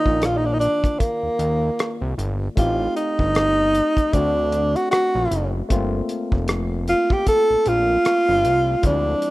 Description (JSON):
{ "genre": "lush 1970s-style soul", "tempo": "77 BPM", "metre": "4/4", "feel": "swing 58% on 16ths", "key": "unclear", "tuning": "A4 = 439 Hz", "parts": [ { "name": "breathy tenor saxophone", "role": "melody", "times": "0.0-9.3 s", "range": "Bb3 to A4", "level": "-18 LUFS", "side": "equal", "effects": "none" }, { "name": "barky tine electric piano", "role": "accompaniment", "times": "0.0-9.3 s", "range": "Eb3 to D5", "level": "-29 LUFS", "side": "left 3 dB", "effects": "none" }, { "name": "fat analog bass", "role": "bass", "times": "0.1-9.1 s", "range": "F1 to Eb2", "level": "-24 LUFS", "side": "equal", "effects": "none" }, { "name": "cloth-damped thuddy drum kit", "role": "drums", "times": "0.1-9.3 s", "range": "hi-hat, kick drum, rim click", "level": "-23 LUFS", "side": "equal", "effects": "none" } ], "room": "light reverb, studio reverb", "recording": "rough home demo mix", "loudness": "-18 LUFS", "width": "side -18 dB against mid", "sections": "0.0-9.3 A section", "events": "none", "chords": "0.0 Cm11 (rootless); 2.6 Am7b5; 4.1 D7; 5.7 Gm11", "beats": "0.22 1.00 1.79 | 2.57 3.35 4.14 4.92 | 5.71 6.49 7.27 8.06 | 8.84" }